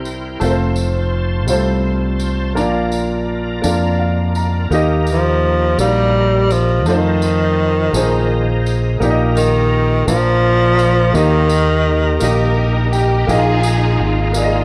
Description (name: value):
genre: slow gospel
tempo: 56 BPM (dotted quarters)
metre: 6/8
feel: straight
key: Eb major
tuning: A4 = 440 Hz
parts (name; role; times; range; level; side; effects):
- clear tenor saxophone; melody; 0.0-0.1, 5.1-12.6 s; Eb3 to G3; -18 LUFS; equal; none
- warm upright piano; accompaniment; 0.0-14.6 s; Bb2 to Bb5; -22 LUFS; equal; none
- bright tonewheel organ; sustained chords; 0.0-14.6 s; Eb4 to C6; -27 LUFS; equal; fast rotary speaker, chorus vibrato
- fingered electric bass; bass; 0.0-14.6 s; F1 to F2; -19 LUFS; equal; none
- tambourine; percussion; 0.1-14.6 s; none; -35 LUFS; equal; none
- warm studio string section; melody; 12.2-14.6 s; Ab3 to Bb4; -23 LUFS; equal; none
room: light reverb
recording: worn, warbling old tape, cassette tape, warbly pitch drift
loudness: -15 LUFS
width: mono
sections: 0.0-13.3 A section; 13.3-14.6 B section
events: upright piano fill 3.6-4.7, 12.2-13.3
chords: 0.4 F; 2.6 Bb; 4.7 Eb; 6.9 F7; 7.9 Bb9sus4; 9.0 Eb/Bb; 10.1 Bb; 11.1 Eb; 13.3 Bb7sus4